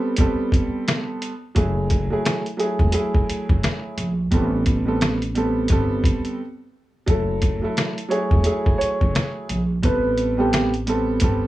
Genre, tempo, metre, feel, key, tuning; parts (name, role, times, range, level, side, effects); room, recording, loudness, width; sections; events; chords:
hip hop, boom-bap hip-hop; 87 BPM; 4/4; swing 60% on 16ths; A4 = 441 Hz
dark concert grand piano; accompaniment; 0.0-11.5 s; F#3 to A4; -23 LUFS; right 2 dB; cassette tape, high-pass filter, low-pass filter, plate reverb
trip hop sampler-style drum kit; drums; 0.2-11.4 s; hi-hat, kick drum, snare drum; -21 LUFS; equal
upright bass; bass; 1.6-11.5 s; E1 to A#1; -23 LUFS; equal
dark upright piano; melody; 7.1-10.7 s; G4 to C#5; -25 LUFS; equal; high-pass filter, low-pass filter, slapback echo, plate reverb
light reverb; small room ambience; -19 LUFS; side -16 dB against mid
0.0-11.5 A section
break 0.0-1.6, 6.4-7.1
0.0 Am9; 1.6 F#m9; 4.3 Am9; 7.1 F#m9; 9.8 Am9